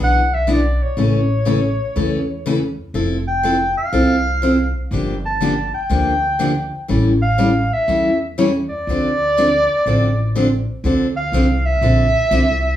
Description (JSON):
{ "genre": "acoustic string swing (jazz manouche)", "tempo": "122 BPM", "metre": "4/4", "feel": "swing 64% on 8ths", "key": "D minor", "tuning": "A4 = 440 Hz", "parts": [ { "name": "warm clarinet", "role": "melody", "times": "0.0-12.8 s", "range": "C#5 to A5", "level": "-19 LUFS", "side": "equal", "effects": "plate reverb" }, { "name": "picked steel-string acoustic guitar", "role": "accompaniment", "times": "0.0-12.4 s", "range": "C#3 to A4", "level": "-19 LUFS", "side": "left 1 dB", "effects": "none" }, { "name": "upright bass", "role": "bass", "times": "0.0-12.8 s", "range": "F1 to E2", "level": "-20 LUFS", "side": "equal", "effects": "none" } ], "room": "wet studio ambience, RT60 0.5 s", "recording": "heard from further back in the room, studio reverb", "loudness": "-15 LUFS", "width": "side -12 dB against mid", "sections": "0.0-10.8 A section; 10.8-12.8 A section", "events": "none", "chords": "0.0 E7; 1.0 A; 2.9 Fmaj7; 4.9 Gm7; 6.9 A7; 8.9 Dm7" }